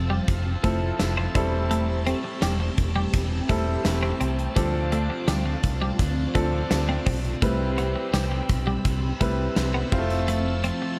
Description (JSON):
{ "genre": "1980s-style pop", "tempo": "84 BPM", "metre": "4/4", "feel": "straight", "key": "A minor", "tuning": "A4 = 440 Hz", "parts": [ { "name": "biting overdriven guitar", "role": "accompaniment", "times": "0.0-11.0 s", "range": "A2 to F4", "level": "-39 LUFS", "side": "equal", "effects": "subtle chorus" }, { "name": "clear baby grand piano", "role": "accompaniment", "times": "0.0-11.0 s", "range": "F3 to C5", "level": "-32 LUFS", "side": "equal", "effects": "none" }, { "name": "string machine, full ensemble", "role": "sustained chords", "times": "0.0-11.0 s", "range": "F3 to E6", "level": "-35 LUFS", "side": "equal", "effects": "phaser, ensemble chorus" }, { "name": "vintage muted fingered electric bass", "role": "bass", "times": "0.0-10.7 s", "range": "E1 to D2", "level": "-29 LUFS", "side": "equal", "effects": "none" }, { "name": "twelve-string electric guitar", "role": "riff", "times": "0.1-10.8 s", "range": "G3 to D4", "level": "-33 LUFS", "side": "equal", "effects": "analog chorus, digital delay" }, { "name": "gated 80s drum kit", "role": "drums", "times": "0.3-10.8 s", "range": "crash cymbal, hi-hat, kick drum, snare drum, tambourine", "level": "-29 LUFS", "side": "equal", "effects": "none" } ], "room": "light reverb", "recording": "none", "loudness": "-24 LUFS", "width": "mono", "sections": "0.0-11.0 A section", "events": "none", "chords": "0.0 Fmaj7; 1.4 Am7/E; 4.6 Dm7; 7.4 Cmaj7; 9.9 Fmaj7", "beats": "0.28 1.00 | 1.71 2.42 3.14 3.85 | 4.57 5.28 6.00 6.71 | 7.42 8.14 8.85 9.57 | 10.28" }